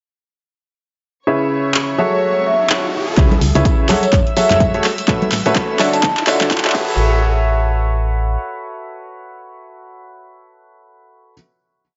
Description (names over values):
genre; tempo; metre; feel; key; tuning
piano house; 126 BPM; 4/4; swing 59% on 16ths; A major; A4 = 440 Hz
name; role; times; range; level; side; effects
warm studio string section; sustained chords; 1.3-6.7 s; C#5 to E6; -31 LUFS; equal; sidechain pumping, low-pass filter
clear upright piano; riff; 1.3-11.3 s; C#3 to E5; -21 LUFS; equal; sidechain pumping, low-pass filter, analog delay
riser; sound effects; 1.9-7.0 s; none; -28 LUFS; equal; none
punchy analog drum machine; drums; 1.7-6.9 s; crash cymbal, handclaps, hi-hat; -23 LUFS; equal; high-pass filter on snare, high-pass filter on hats, high-pass filter on cymbals, high-pass filter on room
vibraphone with soft mallets; melody; 2.1-6.4 s; C#5 to A5; -22 LUFS; equal; analog delay
solid FM bass; bass; 3.2-8.4 s; F#1 to D2; -20 LUFS; equal; sidechain pumping
electronic kick drum; drums; 3.2-6.9 s; none; -18 LUFS; equal; none
tambourine and congas; percussion; 3.2-7.0 s; none; -26 LUFS; equal; none
room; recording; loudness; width
light reverb; dry, gritty hardware recording, transformer saturation, high-pass filter, nothing above 7.7 kHz; -16 LUFS; mono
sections
1.3-3.2 intro; 3.2-7.0 build; 7.0-10.8 final hit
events
riser 1.9-3.2; build-up 3.2-7.0; drum fill 3.2-7.0; filter sweep 3.2-7.0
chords
1.3 C#m7; 2.0 F#m9; 2.9 N.C.; 3.2 C#m7; 3.9 F#m9; 4.8 A69; 5.8 Dmaj9; 6.7 A69